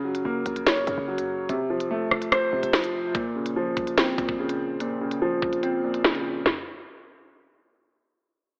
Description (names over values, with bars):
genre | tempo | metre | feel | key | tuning
hip hop, drill | 145 BPM | 4/4 | half-time | Bb harmonic minor | A4 = 442 Hz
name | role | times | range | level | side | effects
dark grand piano | accompaniment | 0.0-6.5 s | Bb2 to Db5 | -28 LUFS | equal | low-pass filter
short 808-style bass | bass | 0.0-2.9 s | F1 to Gb2 | -40 LUFS | equal | none
drill drum kit | drums | 0.1-6.6 s | hi-hat, kick drum, rim click, snare drum, toms | -27 LUFS | equal | none
room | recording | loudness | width
light reverb, digital ambience | low-pass filter, AM radio sound | -26 LUFS | mono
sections
0.0-3.1 A section; 3.1-6.5 B section; 6.5-8.6 C section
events
kick muted 5.6-6.5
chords
0.0 Gb; 1.5 F; 3.1 Bbmadd9; 6.5 N.C.